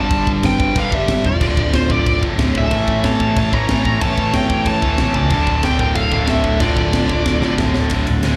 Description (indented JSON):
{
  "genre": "heavy metal",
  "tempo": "184 BPM",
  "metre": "4/4",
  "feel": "straight",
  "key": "D minor",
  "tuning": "A4 = 440 Hz",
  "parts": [
    { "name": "high-gain lead guitar", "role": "melody", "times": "0.0-7.5 s", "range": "C5 to Bb5", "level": "-24 LUFS", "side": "equal", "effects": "distortion, slapback echo, delay" },
    { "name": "high-gain lead guitar", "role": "second line", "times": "0.0-7.5 s", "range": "F4 to D5", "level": "-29 LUFS", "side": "equal", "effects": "distortion, slapback echo, delay" },
    { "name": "high-gain distorted guitar", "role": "riff", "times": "0.0-8.4 s", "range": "D2 to A3", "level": "-23 LUFS", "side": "equal", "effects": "distortion, slapback echo" },
    { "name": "overdriven picked electric bass", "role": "bass", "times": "0.0-8.3 s", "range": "D1 to D2", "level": "-23 LUFS", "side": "equal", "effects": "none" },
    { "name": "tight metal drum kit", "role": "drums", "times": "0.1-8.3 s", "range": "crash cymbal, kick drum, ride cymbal, snare drum", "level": "-23 LUFS", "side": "equal", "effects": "none" },
    { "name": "tight distorted guitar", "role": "riff", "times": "2.7-8.4 s", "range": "D2 to A3", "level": "-27 LUFS", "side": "equal", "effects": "distortion, slapback echo" }
  ],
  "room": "little or no reverb",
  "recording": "live gig heard through the venue's PA, club reverb",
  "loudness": "-17 LUFS",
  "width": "mono",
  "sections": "0.0-7.9 A section",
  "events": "drum fill 7.3-7.9",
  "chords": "0.0 G; 1.4 Dm; 2.7 A; 5.3 Dm",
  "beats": "| 0.10 0.43 0.76 1.08 | 1.41 1.73 2.06 2.39 | 2.71 3.04 3.36 3.69 | 4.01 4.34 4.67 4.99 | 5.32 5.64 5.97 6.29 | 6.62 6.94 7.27 7.59 | 7.92 8.24"
}